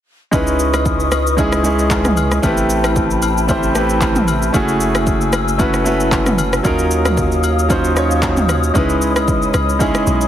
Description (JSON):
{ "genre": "amapiano", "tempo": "114 BPM", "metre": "4/4", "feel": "swing 55% on 16ths", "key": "C# minor", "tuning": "A4 = 439 Hz", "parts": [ { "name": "bright grand piano", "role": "accompaniment", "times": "0.3-10.3 s", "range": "F#3 to C#5", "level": "-17 LUFS", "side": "right 1 dB", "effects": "none" }, { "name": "large flute ensemble", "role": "sustained chords", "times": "0.3-10.3 s", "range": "E4 to E6", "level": "-22 LUFS", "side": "left 3 dB", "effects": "sidechain pumping" }, { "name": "saturated sub bass", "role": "bass", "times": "0.3-8.7 s", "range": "F#1 to D#2", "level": "-20 LUFS", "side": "equal", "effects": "none" }, { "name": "deep house drum kit", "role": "drums", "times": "0.3-10.3 s", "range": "handclaps, kick drum, rim click, shaker, toms", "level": "-19 LUFS", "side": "equal", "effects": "overdrive" }, { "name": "agogo bells", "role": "percussion", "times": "0.3-9.9 s", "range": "none", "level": "-27 LUFS", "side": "left 10 dB", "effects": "none" }, { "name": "deep log drum bass", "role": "bass", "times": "8.8-10.3 s", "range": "B1 to C#2", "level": "-20 LUFS", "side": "equal", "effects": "none" } ], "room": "light reverb, studio ambience", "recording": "heavily compressed radio sound, multiband compression", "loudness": "-13 LUFS", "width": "side -10 dB against mid", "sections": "0.3-10.3 A section", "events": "none", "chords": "0.3 C#m9; 2.4 Am9; 4.5 F#m9; 6.6 D#m9; 8.8 C#m9" }